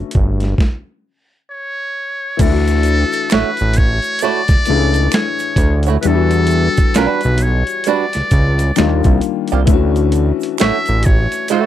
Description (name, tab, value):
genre	R&B, neo-soul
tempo	66 BPM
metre	4/4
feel	swing 61% on 16ths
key	D major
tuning	A4 = 440 Hz
part	warm grand piano	accompaniment	0.0-11.7 s	D3 to A4	-20 LUFS	left 12 dB	none
part	fat analog bass	bass	0.0-11.3 s	G1 to E2	-15 LUFS	right 1 dB	none
part	boom bap sampler-style drum kit	drums	0.1-11.7 s	crash cymbal, hi-hat, kick drum, snare drum	-16 LUFS	right 1 dB	none
part	trumpet with metal mute	melody	1.5-11.7 s	A4 to E5	-20 LUFS	left 1 dB	none
part	egg shaker and finger snaps	percussion	2.4-11.7 s	none	-31 LUFS	right 19 dB	none
part	archtop guitar, miked and amplified	second line	3.3-11.7 s	G3 to D5	-16 LUFS	right 10 dB	wah
room	light reverb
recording	dark, warm production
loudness	-12 LUFS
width	side -11 dB against mid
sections	0.0-2.4 A section; 2.4-11.7 B section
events	stop 0.6-2.4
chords	0.0 Gmaj9#11; 1.5 N.C.; 2.4 Dmaj9; 6.0 Em9; 8.8 Ebmaj9; 9.7 Dmaj9